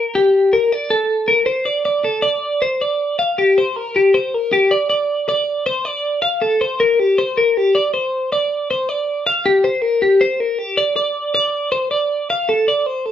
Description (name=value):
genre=rock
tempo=158 BPM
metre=4/4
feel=straight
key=G minor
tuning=A4 = 438 Hz
part: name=twelve-string electric guitar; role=solo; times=0.0-13.1 s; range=G4 to F5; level=-15 LUFS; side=left 1 dB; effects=vibrato effect
room=wet large studio reverb, RT60 0.8 s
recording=band playing live in one room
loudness=-15 LUFS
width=side -10 dB against mid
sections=0.0-2.2 A section; 2.2-13.1 B section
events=none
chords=none